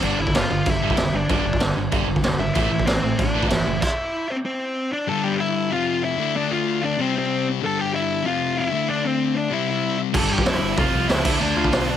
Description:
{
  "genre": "punk rock",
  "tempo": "190 BPM",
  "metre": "4/4",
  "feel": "straight",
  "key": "D minor from 5.1 s",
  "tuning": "A4 = 440 Hz",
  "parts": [
    { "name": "high-gain lead guitar", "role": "melody", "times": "0.0-12.0 s", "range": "C4 to A5", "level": "-24 LUFS", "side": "equal", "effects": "distortion, tape echo" },
    { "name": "distorted electric guitar", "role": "riff", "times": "0.0-3.8, 10.1-12.0 s", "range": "F2 to D4", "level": "-26 LUFS", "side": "right 11 dB", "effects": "distortion" },
    { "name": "sludgy distorted guitar", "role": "riff", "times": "0.0-12.0 s", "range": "F2 to D4", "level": "-25 LUFS", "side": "left 11 dB", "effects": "overdrive" },
    { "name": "growling picked electric bass", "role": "bass", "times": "0.0-3.8, 10.1-12.0 s", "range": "F1 to F2", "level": "-27 LUFS", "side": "right 1 dB", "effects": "overdrive" },
    { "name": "raw garage drum kit", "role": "drums", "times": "0.0-3.9, 10.1-11.8 s", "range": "crash cymbal, hi-hat, kick drum, snare drum", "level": "-22 LUFS", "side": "right 1 dB", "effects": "none" }
  ],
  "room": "light reverb",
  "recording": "none",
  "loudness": "-19 LUFS",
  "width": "side -10 dB against mid",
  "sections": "0.0-5.1 A section; 5.1-12.0 B section",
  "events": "stop 3.8-5.1",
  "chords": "0.0 G5; 2.6 Am; 5.1 G5; 5.7 F5; 6.2 Dm; 7.0 C5; 7.6 G5; 8.2 F5; 8.7 D5; 9.5 C; 10.1 G5; 10.8 F5; 11.2 Dm"
}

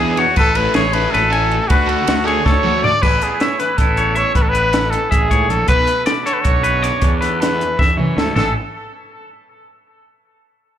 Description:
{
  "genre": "math rock and midwest emo",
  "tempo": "315 BPM (eighths)",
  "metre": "7/8",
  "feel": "straight",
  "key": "A major",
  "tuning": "A4 = 442 Hz",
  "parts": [
    { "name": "clear trumpet", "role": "melody", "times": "0.0-8.5 s", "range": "F#4 to D5", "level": "-19 LUFS", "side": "equal", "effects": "slapback echo, analog delay" },
    { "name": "twangy electric guitar", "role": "arpeggios", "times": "0.0-8.5 s", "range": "G#4 to G#5", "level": "-20 LUFS", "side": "left 3 dB", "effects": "warbly pitch drift, slapback echo, analog delay" },
    { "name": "overdriven semi-hollow guitar", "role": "riff", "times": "0.0-2.9 s", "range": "E3 to A4", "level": "-23 LUFS", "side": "right 2 dB", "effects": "slapback echo" },
    { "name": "fuzz fingered electric bass", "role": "bass", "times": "0.0-8.5 s", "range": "A1 to E3", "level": "-20 LUFS", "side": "equal", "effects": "overdrive" },
    { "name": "compact cocktail drum kit", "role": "drums", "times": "0.2-8.5 s", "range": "crash cymbal, hi-hat, kick drum, ride cymbal, snare drum, splash cymbal, toms", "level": "-19 LUFS", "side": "equal", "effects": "none" },
    { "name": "twangy electric guitar", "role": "accompaniment", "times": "3.0-8.5 s", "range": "E2 to G#4", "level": "-26 LUFS", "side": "right 12 dB", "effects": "slapback echo" }
  ],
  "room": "small room reverb",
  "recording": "live gig heard through the venue's PA, club reverb",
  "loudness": "-13 LUFS",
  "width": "side -10 dB against mid",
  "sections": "0.0-3.0 A section; 3.0-8.4 B section; 8.4-9.7 C section",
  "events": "drum fill 2.5-3.0, 7.8-8.4",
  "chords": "0.4 Amaj9; 1.7 Dmaj7; 3.0 Amaj9; 5.7 Bm9; 7.0 E9sus4; 8.4 Asus2"
}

